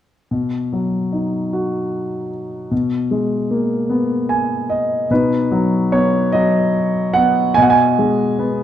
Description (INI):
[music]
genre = classical, lyrical solo piano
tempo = 50 BPM (dotted quarters)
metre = 6/8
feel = rubato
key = B major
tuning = A4 = 440 Hz
[part]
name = warm concert grand piano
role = solo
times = 0.3-8.6 s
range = B2 to G#5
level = -15 LUFS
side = equal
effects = none
[sound]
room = moderate recital hall reverb, RT60 1.7 s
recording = dark, warm production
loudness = -15 LUFS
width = side -10 dB against mid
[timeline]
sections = 0.3-5.1 A section; 5.1-8.6 B section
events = grand piano fill 3.9-5.1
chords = 0.3 B; 2.7 G#madd9/B; 5.1 B; 7.6 G#m/B